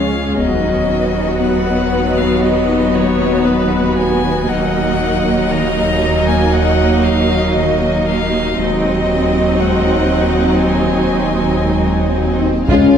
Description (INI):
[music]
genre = cinematic, hybrid orchestral and electronic film score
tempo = 117 BPM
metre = 4/4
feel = straight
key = unclear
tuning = A4 = 441 Hz
[part]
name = rich violin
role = melody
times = 0.0-12.4 s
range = B4 to Bb5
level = -22 LUFS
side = left 4 dB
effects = tape echo
[part]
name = rich symphonic violin section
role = second line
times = 0.0-13.0 s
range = Eb4 to Eb5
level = -22 LUFS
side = left 1 dB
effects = none
[part]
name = warm studio viola section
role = accompaniment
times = 0.0-13.0 s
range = F#3 to Db4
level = -20 LUFS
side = right 2 dB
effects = none
[part]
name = dark French horn section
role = sustained chords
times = 0.0-13.0 s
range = Gb3 to Db4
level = -20 LUFS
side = left 3 dB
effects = none
[part]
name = warm analog pad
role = sustained chords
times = 0.0-13.0 s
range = F3 to D#5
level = -20 LUFS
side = equal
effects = chorus
[part]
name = harp-like synth pluck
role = arpeggios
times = 0.0-13.0 s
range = Db3 to B4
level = -24 LUFS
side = left 2 dB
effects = none
[part]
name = dark symphonic cello section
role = bass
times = 0.0-13.0 s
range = Db2 to Db3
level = -22 LUFS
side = right 3 dB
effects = none
[part]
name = rich symphonic double bass section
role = bass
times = 0.0-13.0 s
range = Db2 to D#2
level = -22 LUFS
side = right 3 dB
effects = none
[part]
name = warm sub bass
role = bass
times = 0.0-13.0 s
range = D#1 to Db2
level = -28 LUFS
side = equal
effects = none
[part]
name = swell and sub drop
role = sound effects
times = 11.4-13.0 s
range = none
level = -25 LUFS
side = left 1 dB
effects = none
[part]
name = rich symphonic violin section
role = melody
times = 12.7-13.0 s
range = F5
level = -27 LUFS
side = left 4 dB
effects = none
[part]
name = warm trombone section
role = sustained chords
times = 12.7-13.0 s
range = F3 to Ab3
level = -22 LUFS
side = right 5 dB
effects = none
[part]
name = mellow tuba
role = bass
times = 12.7-13.0 s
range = Db2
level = -23 LUFS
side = right 3 dB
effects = none
[part]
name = taiko ensemble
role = drums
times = 12.7-13.0 s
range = none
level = -20 LUFS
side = equal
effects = none
[sound]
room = wet recital hall reverb, RT60 1.5 s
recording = heard from further back in the room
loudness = -12 LUFS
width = side -8 dB against mid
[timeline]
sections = 0.0-12.7 A section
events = swell 11.4-12.7; impact 12.7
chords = 0.4 B/D#; 4.5 Ebm; 8.6 Ab7/Eb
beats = | 0.38 0.89 1.40 1.92 | 2.43 2.94 3.46 3.97 | 4.48 4.99 5.51 6.02 | 6.53 7.04 7.56 8.07 | 8.58 9.10 9.61 10.12 | 10.63 11.15 11.66 12.17 | 12.69